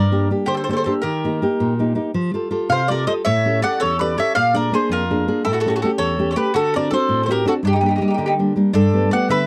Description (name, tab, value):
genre	italian folk, Italian serenade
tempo	109 BPM (dotted quarters)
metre	6/8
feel	straight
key	G minor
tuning	A4 = 444 Hz
part	mandolin	melody	0.0-9.5 s	G4 to F#5	-23 LUFS	equal	none
part	mandolin	second line	0.0-9.5 s	D4 to D5	-28 LUFS	equal	none
part	nylon-string guitar	accompaniment	0.0-9.5 s	E2 to A4	-21 LUFS	equal	none
room	light reverb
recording	dry, close 1970s-style studio recording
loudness	-19 LUFS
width	mono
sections	0.0-8.7 A section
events	none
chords	0.0 Gm; 1.0 Eb; 2.1 Fadd9; 3.2 A7; 4.4 Bb7; 5.5 A7; 6.6 D7; 7.6 Gm; 8.7 Gadd9